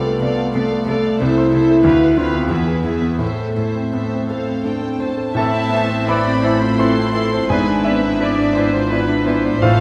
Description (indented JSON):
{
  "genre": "classical",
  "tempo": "81-96 BPM",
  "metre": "3/4",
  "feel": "rubato",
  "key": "A minor",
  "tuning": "A4 = 441 Hz",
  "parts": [
    { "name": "bright concert grand piano", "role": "melody", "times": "0.0-9.8 s", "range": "C2 to C6", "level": "-21 LUFS", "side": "equal", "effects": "none" },
    { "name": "dark studio violin section", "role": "melody", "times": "0.0-9.8 s", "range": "E5 to C6", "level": "-33 LUFS", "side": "equal", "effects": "none" },
    { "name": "warm studio violin section", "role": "second line", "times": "0.0-9.8 s", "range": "B3 to D5", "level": "-32 LUFS", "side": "equal", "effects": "none" },
    { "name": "rich studio viola section", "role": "accompaniment", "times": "0.0-9.8 s", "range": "G#4 to E5", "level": "-28 LUFS", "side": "equal", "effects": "none" },
    { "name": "dark French horn section", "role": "sustained chords", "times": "0.0-9.8 s", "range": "A3 to E4", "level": "-22 LUFS", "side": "equal", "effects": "none" },
    { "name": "clear chamber cello section", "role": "bass", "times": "0.2-9.8 s", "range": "E2 to D3", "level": "-28 LUFS", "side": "equal", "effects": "none" },
    { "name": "clear oboe", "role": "second line", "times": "5.4-9.8 s", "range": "A4 to B4", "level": "-31 LUFS", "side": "equal", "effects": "none" },
    { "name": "concert flute", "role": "second line", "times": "5.4-9.7 s", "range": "C5 to E5", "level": "-32 LUFS", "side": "equal", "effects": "none" },
    { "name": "mellow clarinet", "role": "second line", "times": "5.4-9.8 s", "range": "B3 to C4", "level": "-29 LUFS", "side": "equal", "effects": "none" },
    { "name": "mellow bassoon", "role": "accompaniment", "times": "5.4-9.8 s", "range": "E3", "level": "-30 LUFS", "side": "equal", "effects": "none" },
    { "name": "dark studio double bass section", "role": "bass", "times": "5.4-9.8 s", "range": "G#1 to A1", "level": "-27 LUFS", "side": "equal", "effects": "none" }
  ],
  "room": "wet concert hall reverb, RT60 2.5 s",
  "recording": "none",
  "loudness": "-17 LUFS",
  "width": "mono",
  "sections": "0.0-5.4 A section; 5.4-9.8 B section",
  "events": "none",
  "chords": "0.0 Dm7/C; 1.2 Am/C; 1.8 Bdim/D; 2.5 E; 3.2 Am; 7.5 E7/G#"
}